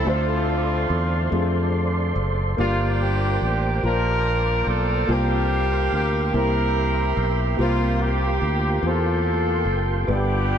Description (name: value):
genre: gospel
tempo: 48 BPM (dotted quarters)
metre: 6/8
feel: straight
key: unclear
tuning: A4 = 440 Hz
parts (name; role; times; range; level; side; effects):
- warm horn section; melody; 0.0-10.6 s; A3 to Bb4; -24 LUFS; equal; analog delay
- warm upright piano; accompaniment; 0.0-10.6 s; G2 to D5; -28 LUFS; left 2 dB; wide subtle chorus
- tonewheel organ; sustained chords; 0.0-10.6 s; Bb3 to D6; -29 LUFS; right 2 dB; slow rotary speaker, overdrive, chorus vibrato
- fingered electric bass; bass; 0.0-10.6 s; Gb1 to F2; -23 LUFS; equal; none
room: moderate huge ambient reverb, RT60 4.7 s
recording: dreamy mix soaked in reverb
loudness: -19 LUFS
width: side -8 dB against mid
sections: 0.0-10.6 A section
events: none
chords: 0.1 Dm7; 2.6 Gm7; 5.1 C7sus4; 6.3 C7; 7.6 C7sus4